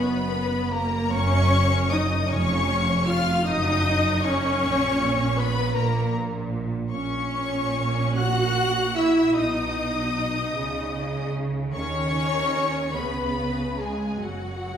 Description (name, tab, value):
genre	classical, slow romantic movement for string orchestra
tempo	46-53 BPM (dotted quarters)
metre	6/8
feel	rubato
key	unclear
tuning	A4 = 440 Hz
part	rich studio violin section	melody	0.0-14.8 s	F#5 to F#6	-28 LUFS	left 4 dB	none
part	warm studio violin section	second line	0.0-14.8 s	F#4 to F#5	-30 LUFS	left 2 dB	none
part	rich studio viola section	accompaniment	0.0-14.8 s	F#3 to F#4	-26 LUFS	right 1 dB	none
part	rich studio double bass section	bass	0.0-14.8 s	E#1 to D#2	-29 LUFS	right 2 dB	none
part	rich symphonic cello section	bass	0.0-14.8 s	E#2 to D#3	-28 LUFS	right 1 dB	none
room	wet recital hall reverb, RT60 1.7 s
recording	heard from further back in the room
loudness	-21 LUFS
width	side -8 dB against mid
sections	0.0-14.8 A section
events	none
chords	0.0 F#5; 2.3 C#/E#; 3.5 D#m7/F#; 4.6 A#m; 9.4 B; 10.5 C#sus2; 11.7 C#sus2/D#; 13.0 G#madd11/C#; 14.2 N.C.